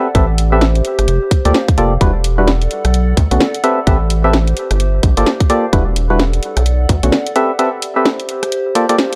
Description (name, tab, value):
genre	UK garage, two-step garage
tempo	129 BPM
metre	4/4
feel	swing 60% on 16ths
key	unclear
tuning	A4 = 440 Hz
part	percussive organ stab	stabs	0.0-9.0 s	D3 to E5	-18 LUFS	equal	chorus, tape echo
part	warbly tape-like pad	texture	0.0-9.2 s	G4 to F#5	-25 LUFS	equal	chorus, built-in reverb, sidechain pumping
part	rubbery square bass	bass	0.1-7.1 s	E1 to D2	-16 LUFS	equal	tube saturation
part	electronic kick drum	drums	0.1-7.0 s	none	-16 LUFS	equal	studio reverb
part	garage drum kit	drums	0.1-9.2 s	hi-hat, rim click, snare drum	-20 LUFS	equal	studio reverb
room	digital ambience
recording	dry, gritty hardware recording, transformer saturation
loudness	-14 LUFS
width	mono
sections	0.0-9.2 A section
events	none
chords	0.0 Am9; 0.8 Gm9; 2.0 Em9; 2.7 Bm9; 3.6 Am9; 4.6 Gm9; 5.7 Em9; 6.4 Bm9; 7.4 Am9; 8.3 Gm9